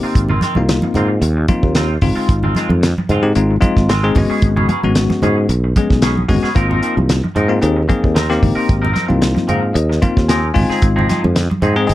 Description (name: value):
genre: electric jazz fusion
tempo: 112 BPM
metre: 4/4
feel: swing 54% on 16ths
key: Ab major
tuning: A4 = 440 Hz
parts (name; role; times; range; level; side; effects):
- bell-like tine electric piano; accompaniment; 0.0-11.9 s; Ab3 to Ab5; -18 LUFS; left 3 dB; fast stereo tremolo
- twangy electric guitar; stabs; 0.0-11.9 s; Eb3 to Bb4; -22 LUFS; right 1 dB; wide subtle chorus
- sustaining fretless electric bass; bass; 0.0-11.9 s; Ab1 to Ab2; -16 LUFS; equal; none
- damped 70s drum kit; drums; 0.2-11.9 s; hi-hat, kick drum, snare drum; -17 LUFS; equal; none
- congas; percussion; 0.3-11.8 s; none; -21 LUFS; right 2 dB; none
room: light reverb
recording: dark, warm production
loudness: -12 LUFS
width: side -15 dB against mid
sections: 0.0-11.9 A section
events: tine electric piano fill 9.2-10.8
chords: 0.0 Ab69; 2.0 Ab6; 4.2 Gbsus24/Ab; 6.6 Ab69; 10.6 Ab6